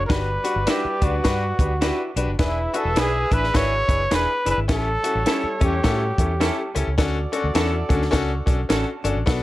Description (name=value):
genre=uptempo 1960s-style soul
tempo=105 BPM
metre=4/4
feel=swing 60% on 8ths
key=D major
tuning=A4 = 440 Hz
part: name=breathy trumpet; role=melody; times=0.0-6.8 s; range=E4 to C#5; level=-24 LUFS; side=equal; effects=none
part: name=archtop guitar, miked and amplified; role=riff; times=0.0-9.2 s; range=C#4 to F#4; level=-31 LUFS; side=left 6 dB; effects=none
part: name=vintage muted fingered electric bass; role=bass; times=0.0-9.4 s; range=E1 to A2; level=-25 LUFS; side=equal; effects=none
part: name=mellow horn section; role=second line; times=0.1-9.4 s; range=G3 to E5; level=-32 LUFS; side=right 1 dB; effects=none
part: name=bright grand piano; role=accompaniment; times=0.1-9.4 s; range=B3 to B4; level=-27 LUFS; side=left 3 dB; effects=plate reverb
part: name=compact cocktail drum kit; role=drums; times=0.1-9.4 s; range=hi-hat, kick drum, snare drum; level=-22 LUFS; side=equal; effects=none
part: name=electric guitar through a small old amp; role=stabs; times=0.7-8.8 s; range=C#4 to B4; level=-32 LUFS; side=right 6 dB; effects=spring reverb, plate reverb
room=little or no reverb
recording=dark, warm production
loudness=-19 LUFS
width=side -16 dB against mid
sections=0.0-9.4 A section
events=none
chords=0.1 Gmaj7; 2.4 E7; 4.7 A7; 7.0 Dmaj7